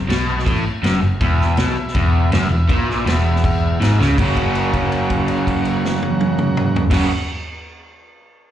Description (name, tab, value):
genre	garage rock duo or trio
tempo	162 BPM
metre	4/4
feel	straight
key	F# mixolydian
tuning	A4 = 444 Hz
part	crunchy overdriven guitar	riff	0.0-7.1 s	E2 to F#4	-18 LUFS	right 1 dB	slapback echo
part	hollow-body short-scale picked electric bass	bass	0.0-7.1 s	E1 to C#2	-19 LUFS	equal	none
part	vintage drum kit	drums	0.1-7.0 s	crash cymbal, kick drum, snare drum, toms	-22 LUFS	equal	none
part	overdriven combo organ	sustained chords	1.2-7.1 s	E4 to E5	-28 LUFS	equal	none
room	light reverb, small room ambience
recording	live gig heard through the venue's PA, club reverb, nothing above 10.4 kHz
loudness	-15 LUFS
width	side -11 dB against mid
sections	0.0-4.2 A section; 4.2-7.1 B section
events	drum fill 4.0; held note 4.2-6.9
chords	0.0 F#5; 1.2 E5; 4.2 F#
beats	0.09 0.46 0.83 | 1.20 1.57 1.95 2.32 | 2.69 3.06 3.43 3.80 | 4.17 4.54 4.91 5.28 | 5.65 6.03 6.40 6.77